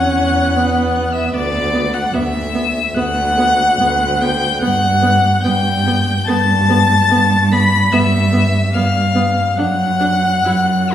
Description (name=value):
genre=classical, slow romantic movement for string quartet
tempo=63-77 BPM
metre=4/4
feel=rubato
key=unclear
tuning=A4 = 440 Hz
part: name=rich violin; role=melody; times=0.0-10.9 s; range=D6 to B6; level=-20 LUFS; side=left 4 dB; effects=none
part: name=rich violin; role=second line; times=0.0-10.9 s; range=A#4 to B5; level=-17 LUFS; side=left 2 dB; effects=none
part: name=warm viola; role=accompaniment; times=0.0-10.9 s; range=B3 to E4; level=-21 LUFS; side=right 2 dB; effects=none
part: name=rich cello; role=bass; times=0.0-10.9 s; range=D2 to G2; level=-17 LUFS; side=right 2 dB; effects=none
room=wet recital hall reverb, RT60 1.8 s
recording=heard from further back in the room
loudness=-12 LUFS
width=side -10 dB against mid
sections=0.0-10.9 A section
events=none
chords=0.0 E5; 1.3 Bm/D; 4.6 G7; 9.6 D/F#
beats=0.56 | 1.34 2.14 2.96 3.80 | 4.62 5.45 6.27 7.11 | 7.93 8.74 9.58 10.45